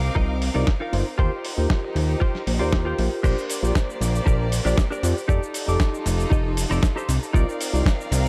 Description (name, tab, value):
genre	nu-disco, nu disco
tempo	117 BPM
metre	4/4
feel	straight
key	unclear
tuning	A4 = 438 Hz
part	rich chamber violin section	sustained chords	0.0-8.3 s	Bb3 to D6	-34 LUFS	equal	sidechain pumping
part	fat analog bass	bass	0.0-8.3 s	F1 to F2	-25 LUFS	equal	none
part	direct-recorded clean electric guitar	riff	0.1-7.9 s	D4 to F5	-33 LUFS	equal	analog chorus, dub echo
part	electronic kick drum	drums	0.2-8.0 s	none	-23 LUFS	equal	none
part	dusty soul sampler-style drum kit	drums	0.4-8.3 s	cabasa, crash cymbal, hi-hat, rim click, snare drum	-32 LUFS	equal	dub echo
part	tine electric piano	accompaniment	0.5-7.8 s	Eb4 to D6	-32 LUFS	equal	sidechain pumping, dub echo
room	light reverb, digital ambience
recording	echo-heavy mix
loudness	-22 LUFS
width	mono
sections	0.0-3.2 A section; 3.2-8.3 B section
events	drop 3.2-8.3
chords	0.0 Cm11; 1.2 Eb69; 3.2 Bb69; 5.3 F13; 7.3 Cm11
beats	0.17 0.68 | 1.19 1.70 2.22 2.73 | 3.24 3.75 4.27 4.78 | 5.29 5.81 6.32 6.83 | 7.34 7.86